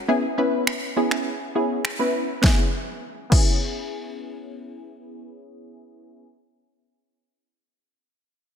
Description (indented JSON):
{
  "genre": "dance-pop",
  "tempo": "102 BPM",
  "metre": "4/4",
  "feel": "straight",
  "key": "C# minor",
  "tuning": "A4 = 440 Hz",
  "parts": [
    { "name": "punchy chord stab", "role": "accompaniment", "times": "0.1-6.3 s", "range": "B3 to B4", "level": "-25 LUFS", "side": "left 1 dB", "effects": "chorus, phaser, sidechain pumping, low-pass filter" },
    { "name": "deep house drum kit", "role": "drums", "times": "0.7-3.5 s", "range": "crash cymbal, finger snaps, kick drum, snare drum", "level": "-21 LUFS", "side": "equal", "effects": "overdrive, soft clipping on snare" }
  ],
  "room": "moderate lush hall reverb, RT60 2.3 s",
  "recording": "dense, heavily limited modern master",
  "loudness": "-20 LUFS",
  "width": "side -8 dB against mid",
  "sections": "0.0-2.4 A section; 2.4-4.8 B section",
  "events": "filter sweep on synth stab 0.0-2.4",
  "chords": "0.1 C#m7"
}